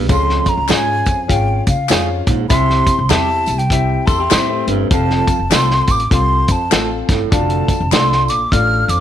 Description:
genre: uptempo 1960s-style soul.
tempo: 100 BPM.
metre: 4/4.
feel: swing 61% on 8ths.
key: F major.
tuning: A4 = 441 Hz.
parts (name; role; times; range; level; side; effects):
breathy baritone saxophone; riff; 0.0-7.8 s; D2 to C3; -22 LUFS; right 12 dB; none.
upright bass; bass; 0.0-9.0 s; F1 to Db3; -19 LUFS; equal; none.
breathy concert flute; melody; 0.1-9.0 s; F5 to F6; -18 LUFS; right 1 dB; none.
warm upright piano; accompaniment; 0.1-9.0 s; C3 to F5; -22 LUFS; left 12 dB; none.
warm soul drum kit; drums; 0.1-9.0 s; hi-hat, kick drum, snare drum; -17 LUFS; equal; none.
tambourine and handclaps; percussion; 0.1-9.0 s; none; -27 LUFS; left 4 dB; none.
clean electric guitar; stabs; 0.7-8.1 s; G3 to A4; -26 LUFS; right 13 dB; tape echo.
electric guitar through a small old amp; riff; 4.1-4.9 s; A3 to A4; -23 LUFS; left 12 dB; none.
room: light reverb, small room ambience.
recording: 1960s-style stereo with parts hard left and right.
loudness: -12 LUFS.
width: side -10 dB against mid.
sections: 0.0-9.0 A section.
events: none.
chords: 0.1 Db; 2.5 C; 4.9 F; 7.3 Dm/F.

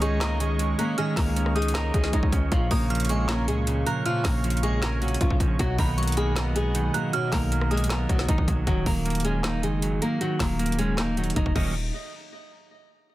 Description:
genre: hip hop, trap.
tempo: 156 BPM.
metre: 4/4.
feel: half-time.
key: Eb minor.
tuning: A4 = 439 Hz.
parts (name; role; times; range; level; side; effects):
flamenco guitar; melody; 0.0-11.7 s; F3 to Eb5; -29 LUFS; left 1 dB; digital delay.
glassy synth bell; second line; 0.0-8.6 s; B5 to Gb6; -34 LUFS; right 2 dB; chorus, phaser, digital delay.
clean electric guitar; accompaniment; 0.0-11.7 s; Bb2 to Eb5; -28 LUFS; right 3 dB; none.
warm analog pad; sustained chords; 0.0-8.6 s; Ab4 to Db6; -38 LUFS; left 1 dB; chorus.
distorted 808-style bass; bass; 0.0-11.9 s; Eb1 to Db2; -27 LUFS; equal; distortion.
trap drum kit; drums; 0.0-11.6 s; crash cymbal, handclaps, hi-hat, kick drum, rim click, snare drum; -28 LUFS; equal; none.
room: digital ambience.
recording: dense, heavily limited modern master.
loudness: -22 LUFS.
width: side -16 dB against mid.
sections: 0.0-8.7 A section; 8.7-11.7 B section; 11.7-13.1 C section.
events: none.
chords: 0.0 Dbsus2; 2.5 Bbm; 5.6 Bmaj7; 8.7 Ebm7; 11.7 N.C..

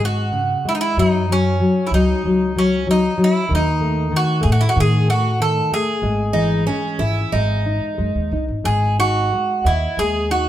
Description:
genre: fado-style ballad.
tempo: 93 BPM.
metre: 4/4.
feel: rubato.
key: C# minor.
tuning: A4 = 440 Hz.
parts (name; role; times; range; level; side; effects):
nylon-string guitar; accompaniment; 0.0-10.5 s; C#3 to D#5; -20 LUFS; left 2 dB; none.
upright bass; bass; 0.0-10.5 s; G#1 to A2; -21 LUFS; equal; none.
Greek bouzouki; melody; 0.1-10.5 s; C#4 to A4; -20 LUFS; right 1 dB; none.
picked twelve-string acoustic guitar; second line; 6.3-8.4 s; C#4 to E4; -23 LUFS; right 4 dB; none.
room: moderate stone room reverb, RT60 1.3 s.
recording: band playing live in one room.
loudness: -16 LUFS.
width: side -12 dB against mid.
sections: 0.0-10.5 A section.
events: none.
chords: 0.0 C#5; 1.0 F#5; 3.5 D#dim; 6.0 C#madd9/G#; 7.3 G#5.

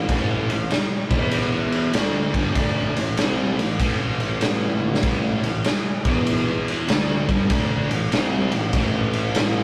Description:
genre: blues rock power trio and southern rock.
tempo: 97 BPM.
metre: 4/4.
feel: swing 65% on 8ths.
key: A minor.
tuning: A4 = 439 Hz.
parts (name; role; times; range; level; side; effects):
sludgy distorted guitar; riff; 0.0-9.6 s; G2 to E4; -26 LUFS; equal; overdrive.
breathy tuba; bass; 0.0-9.6 s; G1 to E2; -31 LUFS; equal; none.
raw garage drum kit; drums; 0.1-9.5 s; kick drum, ride cymbal, snare drum, toms; -24 LUFS; equal; none.
room: moderate small room reverb, RT60 0.5 s.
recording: rough rehearsal-room recording.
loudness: -22 LUFS.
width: mono.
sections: 0.0-9.6 A section.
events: drum fill 4.7-5.0.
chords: 0.0 A5; 1.0 E5; 1.9 Am; 6.0 E5; 6.9 Am.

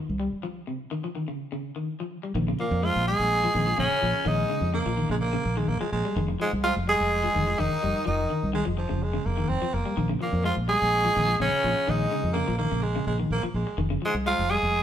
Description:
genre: afrobeat.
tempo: 126 BPM.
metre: 4/4.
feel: straight.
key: Bb dorian.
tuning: A4 = 440 Hz.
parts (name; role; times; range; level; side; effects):
electric guitar at the edge of break-up; arpeggios; 0.0-14.7 s; C3 to Ab3; -31 LUFS; left 2 dB; tremolo.
fingered electric bass; bass; 0.1-14.8 s; F1 to F2; -28 LUFS; equal; none.
raspy tenor saxophone; melody; 2.6-14.8 s; Ab3 to Ab4; -24 LUFS; equal; none.
bright trombone; second line; 2.6-14.8 s; Ab2 to Ab3; -33 LUFS; right 2 dB; none.
growling baritone saxophone; second line; 4.7-13.9 s; F3 to C4; -31 LUFS; right 3 dB; none.
room: moderate stone room reverb, RT60 1.2 s.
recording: band playing live in one room.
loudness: -23 LUFS.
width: side -10 dB against mid.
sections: 0.0-2.3 A section; 2.3-14.8 B section.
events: break 0.4-2.3.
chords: 0.0 F7(no3); 2.3 Bbm7; 6.2 Fm7; 10.0 Bbm7; 13.8 Fm.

